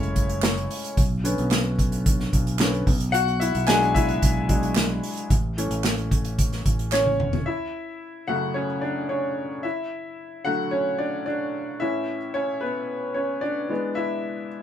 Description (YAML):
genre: piano-driven pop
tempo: 111 BPM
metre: 4/4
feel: straight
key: F# minor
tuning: A4 = 441 Hz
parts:
  - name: clear upright piano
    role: accompaniment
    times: 0.0-14.6 s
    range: F#2 to G#5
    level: -25 LUFS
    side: left 1 dB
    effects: none
  - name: fingered electric bass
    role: bass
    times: 0.0-7.4 s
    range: E1 to B1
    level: -26 LUFS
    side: equal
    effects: none
  - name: unplugged drum kit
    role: drums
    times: 0.0-7.5 s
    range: hi-hat, kick drum, snare drum, toms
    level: -23 LUFS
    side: equal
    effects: none
  - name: group handclap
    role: percussion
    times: 0.4-7.0 s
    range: none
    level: -31 LUFS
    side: right 6 dB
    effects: none
room: moderate studio ambience, RT60 0.5 s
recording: band playing live in one room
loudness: -22 LUFS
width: side -10 dB against mid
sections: 0.0-7.5 A section; 7.5-14.6 B section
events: upright piano solo 0.0-7.5, 7.5-14.6; drum fill 6.9-7.5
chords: 0.0 F#m7; 1.0 Bmadd9; 2.9 E7/B; 5.3 A; 7.5 F#m; 9.6 D; 11.8 A; 13.7 E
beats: 0.43 | 0.97 1.51 2.06 2.60 | 3.14 3.68 4.22 4.76 | 5.30 5.84 6.38 6.93 | 7.47 8.01 8.55 9.09 | 9.64 10.18 10.72 11.26 | 11.80 12.35 12.89 13.43 | 13.97 14.51